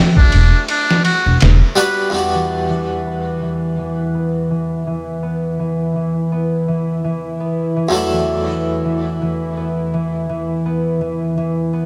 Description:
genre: trip hop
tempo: 83 BPM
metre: 4/4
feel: swing 56% on 16ths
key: E minor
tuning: A4 = 440 Hz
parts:
  - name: harpsichord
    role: accompaniment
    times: 0.0-11.9 s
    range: E2 to F#4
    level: -23 LUFS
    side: equal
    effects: tremolo, tape echo
  - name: trumpet with metal mute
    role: melody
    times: 0.2-2.1 s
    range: D4 to B4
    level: -23 LUFS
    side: equal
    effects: dub echo
  - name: trip hop sampler-style drum kit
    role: drums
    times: 0.2-2.0 s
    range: kick drum, ride cymbal, snare drum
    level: -17 LUFS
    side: equal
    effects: overdrive
  - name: upright bass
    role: bass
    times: 0.3-1.6 s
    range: E1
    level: -13 LUFS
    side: equal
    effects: tube saturation
  - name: bowed-like drone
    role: texture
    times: 3.6-11.9 s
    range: E4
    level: -31 LUFS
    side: equal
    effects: built-in reverb
  - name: concert harp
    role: arpeggios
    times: 2.3-11.9 s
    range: E3 to B3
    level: -22 LUFS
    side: equal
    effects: low-pass filter, tape echo
room: small room ambience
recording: none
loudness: -18 LUFS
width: mono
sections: 0.0-2.1 A section; 2.1-11.9 B section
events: filter sweep on harpsichord 0.0-2.1; break 0.7-2.1; filter sweep on harp 2.1-11.9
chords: 0.0 Em7; 7.9 Dadd9/E

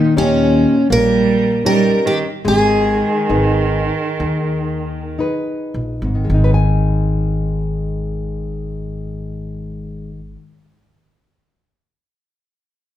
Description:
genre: fado-style ballad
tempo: 53-83 BPM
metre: 4/4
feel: rubato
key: G# harmonic minor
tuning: A4 = 441 Hz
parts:
  - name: picked twelve-string acoustic guitar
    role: melody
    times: 0.0-5.2 s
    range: C#4 to A#4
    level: -17 LUFS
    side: left 1 dB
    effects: none
  - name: warm cello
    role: second line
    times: 0.0-5.2 s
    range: A#2 to G3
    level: -19 LUFS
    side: right 5 dB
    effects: none
  - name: nylon-string guitar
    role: accompaniment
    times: 0.0-10.6 s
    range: G#2 to G#5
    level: -20 LUFS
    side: left 2 dB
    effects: none
  - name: upright bass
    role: bass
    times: 0.2-10.3 s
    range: G#1 to D#2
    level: -21 LUFS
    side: equal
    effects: none
room: moderate recital hall reverb, RT60 1.4 s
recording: minimal, uncompressed stereo recording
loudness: -14 LUFS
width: side -12 dB against mid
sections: 0.0-6.3 A section; 6.3-10.7 B section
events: slowing down 0.0-6.3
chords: 0.0 D#7; 2.5 G#m; 6.3 G#5

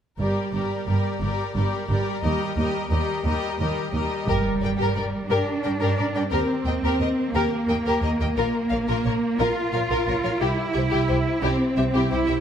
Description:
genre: cinematic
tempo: 59 BPM (dotted quarters)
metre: 6/8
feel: straight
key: G minor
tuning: A4 = 440 Hz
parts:
  - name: warm symphonic violin section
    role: second line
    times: 0.2-12.4 s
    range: E4 to Eb5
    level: -30 LUFS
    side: left 4 dB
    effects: none
  - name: warm studio viola section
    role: accompaniment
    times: 0.2-12.3 s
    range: G3 to Bb4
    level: -29 LUFS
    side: right 1 dB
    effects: none
  - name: rich symphonic cello section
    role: bass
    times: 0.2-12.4 s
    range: Eb2 to F4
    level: -26 LUFS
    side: right 1 dB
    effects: none
  - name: warm symphonic double bass section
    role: bass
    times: 0.2-12.4 s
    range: G1 to G2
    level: -26 LUFS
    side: right 2 dB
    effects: none
  - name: rich studio violin section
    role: melody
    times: 4.3-12.3 s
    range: G4 to G5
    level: -30 LUFS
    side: left 6 dB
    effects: none
  - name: impact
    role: sound effects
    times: 4.3-6.3 s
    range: none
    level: -32 LUFS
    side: left 1 dB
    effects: none
room: moderate scoring stage reverb, RT60 2.1 s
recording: none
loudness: -21 LUFS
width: side -8 dB against mid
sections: 0.2-4.3 A section; 4.3-12.4 B section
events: impact 4.3-6.3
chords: 0.2 Gm; 2.2 Eb; 4.3 Gm; 6.3 Eb; 8.4 Bb5; 10.4 C

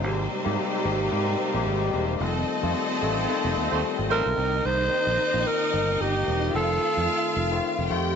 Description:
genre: disco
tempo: 110 BPM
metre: 4/4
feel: swing 56% on 16ths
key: unclear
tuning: A4 = 435 Hz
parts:
  - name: clear studio string section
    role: second line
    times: 0.0-8.2 s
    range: G3 to G5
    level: -27 LUFS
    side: equal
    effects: none
  - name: overdriven tine electric piano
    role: accompaniment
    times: 0.0-8.2 s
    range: C3 to G4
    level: -29 LUFS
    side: left 11 dB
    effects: analog chorus
  - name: fingered electric bass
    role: bass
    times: 0.0-8.1 s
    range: E1 to Ab2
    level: -28 LUFS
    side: right 3 dB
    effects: none
  - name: clear horn section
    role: stabs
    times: 3.7-4.3 s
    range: A3 to C5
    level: -31 LUFS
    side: right 14 dB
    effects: none
  - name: breathy alto saxophone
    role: melody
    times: 4.1-7.6 s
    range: G4 to C5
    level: -24 LUFS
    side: right 2 dB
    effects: none
room: light reverb, small room ambience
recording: 1960s-style stereo with parts hard left and right, nothing above 7.9 kHz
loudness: -22 LUFS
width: side -7 dB against mid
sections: 0.0-4.4 A section; 4.4-8.2 B section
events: band accent 2.2-4.4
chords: 0.0 Abmaj9; 2.2 F9; 4.4 Cm7; 6.5 F7

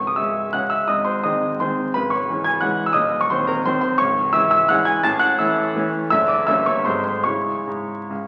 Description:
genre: classical, romantic triple-time dance for piano with dotted rhythms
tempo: 138-186 BPM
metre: 3/4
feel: rubato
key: C# minor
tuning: A4 = 435 Hz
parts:
  - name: clear grand piano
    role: solo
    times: 0.0-8.3 s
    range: C#1 to A6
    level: -20 LUFS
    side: equal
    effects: none
room: wet recital hall reverb, RT60 1.7 s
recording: very old 78 rpm record, vinyl crackle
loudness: -20 LUFS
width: mono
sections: 0.0-8.3 A section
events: none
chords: 0.0 C#m; 0.9 G#; 1.9 C#m; 3.0 Cdim/Eb; 4.0 C#m; 5.0 A; 6.1 D/F#; 6.5 Gdim7; 6.9 G#7b9; 7.3 C#m

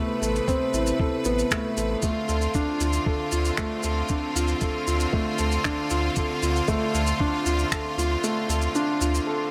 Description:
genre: piano and strings electronica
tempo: 116 BPM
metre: 4/4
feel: straight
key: unclear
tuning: A4 = 440 Hz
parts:
  - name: bright studio string section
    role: sustained chords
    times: 0.0-9.5 s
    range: C3 to B4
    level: -31 LUFS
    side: equal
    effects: sidechain pumping
  - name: felt-muted upright piano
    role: riff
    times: 0.0-9.5 s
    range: A3 to A4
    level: -29 LUFS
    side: equal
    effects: digital delay
  - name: warm sub bass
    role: bass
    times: 0.2-9.2 s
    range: A1 to D2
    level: -29 LUFS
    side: equal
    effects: sidechain pumping
  - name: shaker and finger snaps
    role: drums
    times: 0.2-9.2 s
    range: none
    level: -33 LUFS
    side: equal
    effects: none
  - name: electronic kick drum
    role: drums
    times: 0.5-7.8 s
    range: none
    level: -31 LUFS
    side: equal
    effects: none
room: light reverb, small room reverb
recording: none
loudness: -25 LUFS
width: mono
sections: 0.0-9.5 A section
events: kick drops out 8.2-9.5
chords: 0.0 Amadd9; 2.0 Dm7

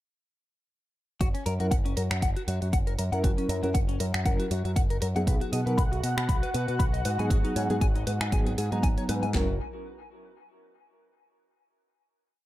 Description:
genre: nu-disco, nu disco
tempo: 118 BPM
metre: 4/4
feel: swing 55% on 16ths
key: F# mixolydian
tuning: A4 = 441 Hz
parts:
  - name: direct-recorded clean electric guitar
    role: riff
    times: 1.2-9.6 s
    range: C#4 to B5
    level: -35 LUFS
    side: left 4 dB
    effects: analog chorus, dub echo
  - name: picked electric bass with an envelope filter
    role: bass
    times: 1.2-9.6 s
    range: F#1 to B2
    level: -29 LUFS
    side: equal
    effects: none
  - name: house drum kit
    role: drums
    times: 1.2-9.5 s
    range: handclaps, kick drum, snare drum, toms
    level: -26 LUFS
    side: equal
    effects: none
  - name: house drum kit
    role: drums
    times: 1.2-9.3 s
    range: finger snaps, hi-hat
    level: -37 LUFS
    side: right 2 dB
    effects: none
  - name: reed electric piano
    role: accompaniment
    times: 1.6-9.5 s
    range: F#3 to A#5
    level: -32 LUFS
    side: equal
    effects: fast tremolo, dub echo
  - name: lush unison pad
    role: sustained chords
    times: 5.3-9.4 s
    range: F#4 to F#5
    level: -37 LUFS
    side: equal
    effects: chorus, sidechain pumping
room: light reverb, digital ambience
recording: echo-heavy mix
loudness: -24 LUFS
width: side -15 dB against mid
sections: 1.2-9.3 groove; 9.3-11.4 final chord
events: none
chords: 1.2 F#7; 5.3 B; 7.1 G#m7; 9.3 N.C.

